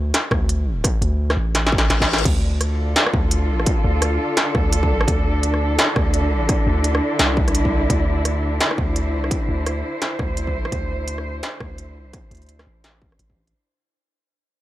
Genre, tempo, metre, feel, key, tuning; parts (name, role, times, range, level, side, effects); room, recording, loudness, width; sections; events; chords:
half-time drum and bass; 170 BPM; 4/4; swing 59% on 16ths, half-time; A4 = 440 Hz
long sustained 808-style bass; bass; 0.0-13.5 s; A1 to D2; -22 LUFS; equal
industrial drum kit; drums; 0.1-13.5 s; crash cymbal, hi-hat, rim click, snare drum; -21 LUFS; equal
electronic kick drum; drums; 0.3-13.4 s; -22 LUFS; equal; distortion
reverse cymbal; sound effects; 1.8-2.3 s; -29 LUFS; left 7 dB
muted chamber cello section; sustained chords; 2.3-13.5 s; D3 to C5; -24 LUFS; equal; sidechain pumping
digital ambience; dry, gritty hardware recording; -17 LUFS; side -15 dB against mid
0.0-13.5 A section
drop 0.0-13.5; drum fill 1.5-2.3; reverse cymbal 1.8-2.3; fade-out 7.9-13.5
0.0 Asus4; 2.3 Dm; 7.9 C/D